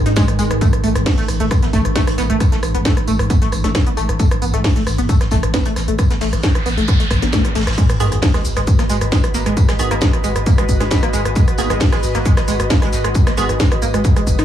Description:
driving peak-time techno; 134 BPM; 4/4; straight; G# minor; A4 = 440 Hz
saturated sub bass; bass; 0.0-14.4 s; G#1 to A1; -21 LUFS; equal; sidechain pumping, low-pass filter
deep dark ambient pad; drone; 0.0-7.8 s; G#2 to D#3; -25 LUFS; right 1 dB; chorus, built-in reverb, sidechain pumping
tight sequenced synth; riff; 0.1-14.4 s; G#3 to D#4; -22 LUFS; right 1 dB; chorus, tube saturation, sidechain pumping, digital delay
techno drum kit; drums; 0.1-14.4 s; hi-hat, rim click, shaker, snare drum; -23 LUFS; equal; sidechain pumping on hats, sidechain pumping on cymbals, sidechain pumping on perc
vintage brush drum kit; drums; 0.1-14.4 s; hi-hat, snare drum, tambourine; -32 LUFS; right 1 dB; sidechain pumping on hats, high-pass filter on hats, high-pass filter on snare, sidechain pumping on perc, high-pass filter on perc, high-pass filter on room
electronic kick drum; drums; 0.2-14.4 s; -16 LUFS; equal
noise sweep and sub drop; sound effects; 6.3-9.6 s; -24 LUFS; equal
airy breathy pad; texture; 7.8-14.4 s; F#4 to D#5; -24 LUFS; left 2 dB; chorus, sidechain pumping
wavetable chord stab; stabs; 8.0-13.5 s; D#3 to G#4; -25 LUFS; right 3 dB; sidechain pumping, tape echo
light reverb; small room ambience; -14 LUFS; side -11 dB against mid
0.0-7.8 A section; 7.8-14.4 B section
noise sweep 6.3-7.8; band accent 7.3; drop 7.8-14.4; impact 7.8-9.6
0.0 G#5; 7.8 G#m

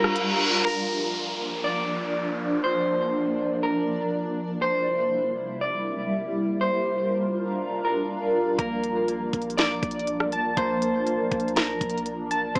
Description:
hip hop, atmospheric cloud-rap; 121 BPM; 4/4; half-time; Bb lydian; A4 = 440 Hz
electric guitar at the edge of break-up; melody; 0.0-12.6 s; Bb4 to D5; -27 LUFS; equal; digital delay
shimmering ambient pad; sustained chords; 0.0-12.6 s; C3 to Bb4; -27 LUFS; equal; chorus, built-in reverb, phaser, sidechain pumping
trap drum kit; drums; 0.0-0.3, 8.6-12.6 s; hi-hat, kick drum, rim click, snare drum; -26 LUFS; equal
reverse cymbal and downlifter; sound effects; 0.0-4.6 s; -28 LUFS; equal
warbly lo-fi synth keys; arpeggios; 8.6-12.6 s; Bb3 to A5; -28 LUFS; equal; chorus, digital delay
clean 808-style bass; bass; 8.6-12.6 s; Bb1 to C2; -39 LUFS; equal
moderate lush hall reverb, RT60 1.7 s, digital ambience; small speaker sound; -23 LUFS; side -29 dB against mid
0.7-12.6 A section
break 0.0-0.7; reverse cymbal 0.0-0.7
0.0 Gm7; 0.7 Bb; 4.6 C7; 6.6 Gm7; 8.6 Bbmaj7

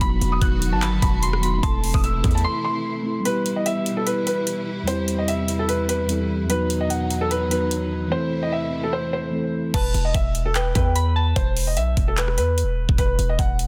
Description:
hip hop, trap; 148 BPM; 4/4; half-time; E harmonic minor; A4 = 439 Hz
felt-muted upright piano; melody; 0.0-13.7 s; A4 to F#6; -28 LUFS; equal; low-pass filter, tape echo
soft synth bell; second line; 0.0-2.8, 9.7-11.4 s; G5 to C6; -33 LUFS; equal; chorus, phaser, tape echo
mellow tine electric piano; accompaniment; 0.0-9.8 s; E2 to A4; -28 LUFS; equal; low-pass filter
warm studio string section; sustained chords; 0.0-9.7 s; E2 to F#4; -33 LUFS; equal
hard-hitting 808-style bass; bass; 0.0-2.4, 9.7-13.7 s; E1 to E2; -24 LUFS; equal
trap drum kit; drums; 0.0-13.7 s; crash cymbal, handclaps, hi-hat, kick drum, rim click; -26 LUFS; equal
light reverb, digital ambience; dense, heavily limited modern master; -22 LUFS; mono
0.0-3.3 A section; 3.3-9.7 B section; 9.7-13.7 C section
break 2.4-3.3
0.0 B/E; 1.6 Am/E; 3.3 Em; 4.9 C/E; 6.5 B/E; 8.1 Am/E; 9.7 Em; 11.4 E5; 13.0 Esus2

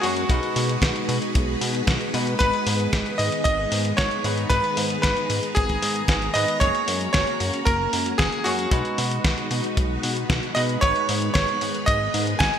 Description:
italo disco; 114 BPM; 4/4; straight; G# minor; A4 = 440 Hz
bright electric grand piano; melody; 0.0-12.6 s; F#4 to G#5; -25 LUFS; right 1 dB; digital delay
string machine, full ensemble; sustained chords; 0.0-12.6 s; D#3 to A#5; -28 LUFS; equal; ensemble chorus
clean electric guitar; stabs; 0.0-12.6 s; G#2 to C#5; -31 LUFS; left 2 dB; digital delay
chorused synth bass; bass; 0.0-12.5 s; F#1 to B2; -28 LUFS; equal
dusty soul sampler-style drum kit; drums; 0.0-12.6 s; hi-hat, snare drum; -26 LUFS; left 1 dB; studio ambience, gated reverb
kick drum; drums; 0.3-12.5 s; -23 LUFS; equal; studio ambience
moderate plate reverb, RT60 1.8 s, small room ambience; bright 1980s-style digital production; -20 LUFS; side -8 dB against mid
0.0-12.6 A section
0.3 B6; 2.4 G#m; 6.6 F#add9; 8.7 B6; 10.8 G#m

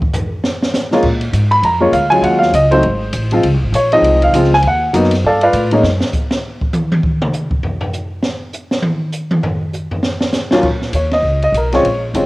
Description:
jazz piano trio; 200 BPM; 4/4; swing 60% on 8ths; Eb minor; A4 = 440 Hz
open jazz drum kit; drums; 0.0-12.2 s; crash cymbal, hi-hat, kick drum, ride cymbal, snare drum, toms; -19 LUFS; equal; cassette tape
warm baby grand piano; melody; 0.9-5.8, 10.5-12.3 s; Eb2 to Cb6; -12 LUFS; equal; cassette tape
upright bass; bass; 1.0-6.0, 10.6-12.3 s; G1 to Bb2; -17 LUFS; equal
light reverb, studio ambience; home recording on cassette; -12 LUFS; side -20 dB against mid
0.0-1.0 A section; 1.0-10.6 A section; 10.6-12.3 B section
grand piano solo 0.0-10.6; drum solo 0.0-1.0, 5.8-10.6; band accent 11.1
0.4 N.C.; 1.0 Bbm7; 2.2 Ebm11; 2.8 Ab; 3.4 Dbmaj7; 4.6 Ebm; 5.2 G9; 5.8 N.C.; 10.6 Eb5

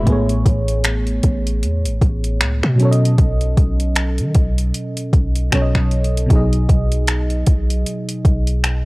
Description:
contemporary R&B; 77 BPM; 4/4; swing 58% on 16ths; A4 = 441 Hz
mellow FM electric piano; accompaniment; 0.0-8.8 s; A2 to D#5; -20 LUFS; equal; chorus
warm 808-style bass; bass; 0.0-8.8 s; A1 to D#3; -18 LUFS; equal
smooth R&B drum kit; drums; 0.1-8.8 s; finger snaps, hi-hat, kick drum; -17 LUFS; equal; overdrive
little or no reverb; dry, gritty hardware recording, cassette tape; -15 LUFS; side -23 dB against mid
0.0-8.8 A section
0.1 Amaj7; 2.8 B7; 6.3 G#m7/B

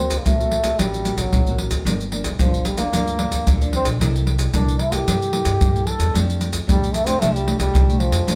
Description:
samba and choro; 112 BPM; 4/4; straight; F major; A4 = 440 Hz
warm trombone; melody; 0.0-8.4 s; F3 to A4; -26 LUFS; equal
nylon-string guitar; accompaniment; 0.0-8.4 s; G2 to A4; -31 LUFS; equal
upright bass; bass; 0.0-8.4 s; G1 to G2; -25 LUFS; equal
maracas, surdo and pandeiro; percussion; 0.1-8.4 s; -23 LUFS; equal
moderate stone room reverb, RT60 1.1 s; band playing live in one room; -20 LUFS; mono
0.0-8.4 A section
0.0 D7b13; 1.9 Gm7; 4.0 C6; 6.1 F69

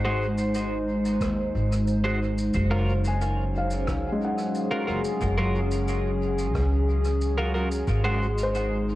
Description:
ambient dub; 90 BPM; 4/4; straight; A4 = 439 Hz
warbly tape-like pad; sustained chords; 0.0-9.0 s; Gb3 to C5; -28 LUFS; equal; chorus, built-in reverb, cassette tape
felt-muted upright piano; arpeggios; 0.0-9.0 s; Ab3 to Ab5; -33 LUFS; left 1 dB; cassette tape, analog delay
twelve-string electric guitar; stabs; 0.0-8.3 s; Gb3 to C5; -31 LUFS; right 1 dB; cassette tape, dub echo
upright bass; bass; 0.0-9.0 s; Gb1 to Eb2; -26 LUFS; equal
shaker and rim click; drums; 0.4-8.7 s; -42 LUFS; right 1 dB; cassette tape, dub echo
electronic kick drum; drums; 1.2-8.0 s; -33 LUFS; equal; overdrive, cassette tape
light reverb, small room ambience; home recording on cassette; -23 LUFS; side -16 dB against mid
0.0-9.0 A section
0.0 Ab7; 2.5 Gbmaj7; 7.9 Ab7

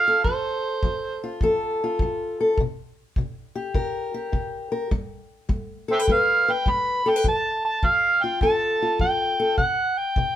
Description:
acoustic country blues, solo or duo; 103 BPM; 4/4; swing 66% on 8ths; A4 = 441 Hz
overdriven harmonica; melody; 0.0-1.4, 5.9-10.4 s; C5 to B5; -21 LUFS; right 2 dB
fingerpicked steel-string acoustic guitar; accompaniment; 0.0-10.4 s; C3 to B4; -25 LUFS; left 2 dB
kick drum; drums; 0.2-10.3 s; -26 LUFS; equal
light reverb; minimal, uncompressed stereo recording; -21 LUFS; side -12 dB against mid
0.0-10.4 A section
0.0 F; 2.6 C5; 4.9 G; 7.2 F; 9.6 C5

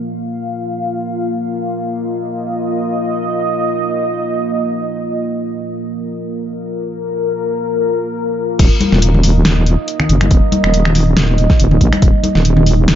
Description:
deep dubstep; 140 BPM; 4/4; swing 55% on 16ths, half-time; A4 = 439 Hz
deep dark ambient pad; sustained chords; 0.0-13.0 s; Bb3 to F5; -18 LUFS; equal; chorus, built-in reverb
wobble bass; bass; 8.6-13.0 s; Eb1 to Bb1; -12 LUFS; equal; chorus
deep house drum kit; drums; 8.6-13.0 s; crash cymbal, finger snaps, hi-hat, snare drum; -17 LUFS; equal
electronic kick drum; drums; 8.6-12.1 s; -12 LUFS; equal
congas; percussion; 8.8-12.8 s; -18 LUFS; left 2 dB; dub echo
light reverb, digital ambience; echo-heavy mix, nothing above 7.5 kHz; -13 LUFS; side -10 dB against mid
0.0-8.6 A section; 8.6-13.0 B section
drop 8.6-13.0
0.0 Eb5

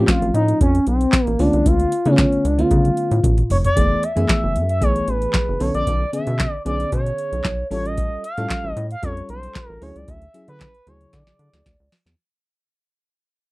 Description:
early-eighties boogie funk; 114 BPM; 4/4; straight; F# minor; A4 = 440 Hz
expressive synth lead; melody; 0.0-11.9 s; B#3 to E#5; -22 LUFS; equal; chorus, slapback echo
FM electric piano with auto-pan; accompaniment; 0.0-11.6 s; C#3 to A4; -24 LUFS; equal
rubbery square bass; bass; 0.0-12.1 s; E#1 to D3; -22 LUFS; equal
booming analog drum machine; drums; 0.1-12.2 s; handclaps, hi-hat, kick drum, snare drum, toms; -20 LUFS; equal
little or no reverb; dry, close 1970s-style studio recording; -17 LUFS; side -21 dB against mid
0.0-3.8 A section; 3.8-12.2 B section
drum fill 2.7-3.8, 11.1-12.2; fade-out 3.8-12.2
0.0 Aaug; 1.4 C#7b9b13; 3.8 F#m11; 5.6 Bm9; 7.7 A7alt; 9.8 Dmaj9#11

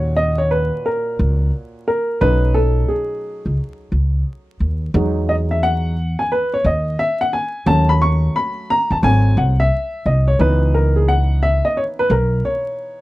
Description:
hip hop, jazz-hop; 88 BPM; 4/4; swing 64% on 16ths; A4 = 440 Hz
dark upright piano; accompaniment; 0.0-13.0 s; A#2 to C#6; -18 LUFS; equal
upright bass; bass; 0.0-12.4 s; G#1 to E2; -16 LUFS; equal
little or no reverb; dry, close 1970s-style studio recording, vinyl crackle; -15 LUFS; side -18 dB against mid
0.0-13.0 A section
upright piano solo 0.0-13.0
0.0 D#m7; 2.2 B13; 4.9 Emaj9; 7.7 D#m7b5; 9.0 G#7b9; 10.4 C#m7

